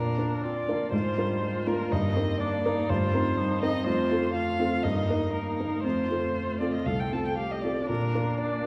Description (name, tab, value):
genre	quick classical-period movement for piano quartet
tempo	121 BPM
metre	4/4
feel	rubato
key	Bb major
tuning	A4 = 440 Hz
part	muted violin	melody	0.0-8.7 s	Bb4 to A5	-33 LUFS	equal	none
part	muted cello	second line	0.0-8.7 s	G3 to C4	-37 LUFS	equal	none
part	muted viola	accompaniment	0.0-8.7 s	C4 to A4	-37 LUFS	equal	none
part	warm baby grand piano	accompaniment	0.0-8.7 s	C2 to Bb4	-30 LUFS	equal	none
room	wet scoring stage reverb, RT60 1.4 s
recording	heard from further back in the room, vinyl crackle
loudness	-28 LUFS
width	mono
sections	0.0-8.7 A section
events	none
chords	0.0 Bb; 0.9 Bb7/Ab; 1.9 Eb/G; 2.9 Cm7/G; 3.9 F; 4.8 Eb/G; 5.8 F; 7.9 Bb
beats	0.42 0.92 1.42 | 1.91 2.40 2.89 3.37 | 3.86 4.35 4.84 5.34 | 5.84 6.35 6.86 7.38 | 7.89 8.39